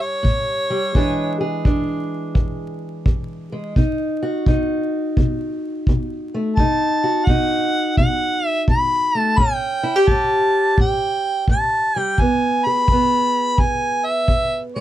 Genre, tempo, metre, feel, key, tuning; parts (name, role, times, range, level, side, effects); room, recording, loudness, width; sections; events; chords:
acoustic country blues, solo or duo; 86 BPM; 4/4; swing 64% on 8ths; A4 = 439 Hz
mellow harmonica; melody; 0.0-1.4, 6.6-14.8 s; C#5 to B5; -19 LUFS; equal
fingerpicked steel-string acoustic guitar; accompaniment; 0.0-14.8 s; E2 to G#4; -21 LUFS; equal
kick drum; drums; 0.2-14.5 s; -18 LUFS; equal
moderate booth ambience, RT60 0.2 s; dark, warm production, vinyl crackle; -17 LUFS; side -12 dB against mid
0.0-14.8 A section
0.0 A7; 1.0 E7; 3.8 B; 9.4 A7; 12.2 E